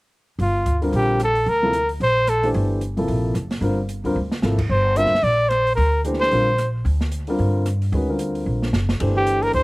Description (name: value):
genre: modal jazz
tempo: 223 BPM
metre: 4/4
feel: swing 58% on 8ths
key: G dorian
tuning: A4 = 439 Hz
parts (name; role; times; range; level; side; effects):
- clear trumpet; melody; 0.4-2.5, 4.7-6.7, 9.2-9.6 s; F4 to E5; -19 LUFS; equal; none
- upright bass; bass; 0.4-9.6 s; F#1 to G2; -22 LUFS; equal; none
- open jazz drum kit; drums; 0.4-9.6 s; crash cymbal, hi-hat, kick drum, ride cymbal, rim click, snare drum; -29 LUFS; right 1 dB; none
- warm concert grand piano; accompaniment; 0.8-9.6 s; C3 to C5; -24 LUFS; left 1 dB; none
room: little or no reverb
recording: recorded outdoors, with no room sound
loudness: -18 LUFS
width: side -23 dB against mid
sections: 0.4-9.0 A section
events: drum fill 4.2, 8.5-9.0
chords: 0.4 Gm11; 9.0 Gsus4